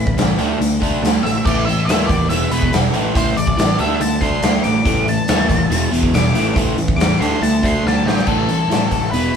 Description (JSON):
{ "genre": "classic rock", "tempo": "141 BPM", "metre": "4/4", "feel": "straight", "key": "A minor", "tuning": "A4 = 441 Hz", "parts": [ { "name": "octave-fuzz lead guitar", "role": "melody", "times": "0.0-9.4 s", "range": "G4 to D6", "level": "-22 LUFS", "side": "left 2 dB", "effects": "distortion" }, { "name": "crunchy overdriven guitar", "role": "riff", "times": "0.0-9.3 s", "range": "E2 to D4", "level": "-18 LUFS", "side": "equal", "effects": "none" }, { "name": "fuzz picked electric bass", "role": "bass", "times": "0.0-9.4 s", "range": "E1 to A2", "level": "-22 LUFS", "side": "right 1 dB", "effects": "overdrive" }, { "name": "big rock drum kit", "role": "drums", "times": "0.1-9.2 s", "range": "crash cymbal, hi-hat, kick drum, snare drum", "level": "-18 LUFS", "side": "equal", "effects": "none" } ], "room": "moderate studio reverb, RT60 0.6 s", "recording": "band playing live in one room", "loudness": "-14 LUFS", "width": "side -7 dB against mid", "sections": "0.0-8.3 A section; 8.3-9.4 B section", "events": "lead electric guitar solo 0.0-8.3; drum fill 7.8-8.3", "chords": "0.4 D5; 1.4 A5; 2.3 E5; 2.9 A5; 3.8 D5; 4.9 A5; 5.7 E5; 6.3 A5; 7.2 D5; 8.3 A5", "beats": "0.17 0.59 1.02 | 1.45 1.87 2.30 2.73 | 3.15 3.58 4.00 4.43 | 4.85 5.28 5.70 6.13 | 6.55 6.98 7.41 7.83 | 8.26 8.69 9.11" }